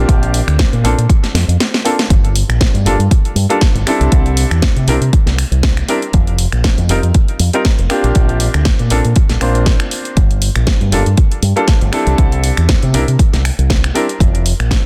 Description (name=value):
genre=nu-disco, nu disco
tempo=119 BPM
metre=4/4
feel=swing 55% on 16ths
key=unclear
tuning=A4 = 439 Hz
part: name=bright baby grand piano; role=accompaniment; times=0.0-14.0 s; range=G3 to C5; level=-21 LUFS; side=equal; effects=sidechain pumping, delay
part: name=fingered electric bass with an envelope filter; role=bass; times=0.0-14.8 s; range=F1 to C3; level=-16 LUFS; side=equal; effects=sidechain pumping
part: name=electronic kick drum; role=drums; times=0.1-14.8 s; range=none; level=-14 LUFS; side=equal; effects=none
part: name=house drum kit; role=drums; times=0.1-14.8 s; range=finger snaps, hi-hat, snare drum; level=-22 LUFS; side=equal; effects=soft clipping on snare
room=digital ambience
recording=dense, heavily limited modern master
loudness=-13 LUFS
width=mono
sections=0.0-14.9 A section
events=drum fill 1.3-2.1; kick drops out 1.6-2.1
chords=0.0 Bb; 2.1 Gm; 3.9 C; 6.1 Fsus4; 7.9 Bb; 10.2 Gm; 11.9 C; 14.2 Fsus4